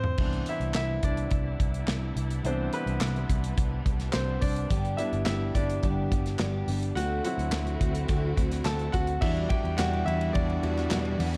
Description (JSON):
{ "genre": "piano-driven pop", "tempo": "106 BPM", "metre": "4/4", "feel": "straight", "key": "unclear", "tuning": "A4 = 436 Hz", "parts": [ { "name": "clear baby grand piano", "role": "accompaniment", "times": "0.0-11.4 s", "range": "E3 to A5", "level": "-35 LUFS", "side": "equal", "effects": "none" }, { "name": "modern studio drum kit", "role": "drums", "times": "0.0-11.4 s", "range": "crash cymbal, handclaps, hi-hat, kick drum, ride cymbal, snare drum, toms", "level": "-32 LUFS", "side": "equal", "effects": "none" }, { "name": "clear studio string section", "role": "sustained chords", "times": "0.2-11.4 s", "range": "C3 to F#4", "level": "-41 LUFS", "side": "equal", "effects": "none" }, { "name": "vintage muted picked electric bass", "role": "bass", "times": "0.2-11.4 s", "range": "G1 to E2", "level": "-33 LUFS", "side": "equal", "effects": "none" }, { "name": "picked steel-string acoustic guitar", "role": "riff", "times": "4.7-11.4 s", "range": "E2 to G4", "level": "-36 LUFS", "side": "equal", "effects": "none" } ], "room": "light reverb", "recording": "dark, warm production", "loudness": "-28 LUFS", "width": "mono", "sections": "0.2-9.2 A section; 9.2-11.4 B section", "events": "drum fill 0.0; stop 0.0; grand piano solo 0.2-9.2, 9.2-11.4", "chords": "0.2 Cmaj7; 4.7 G; 7.0 D7; 9.2 Em7" }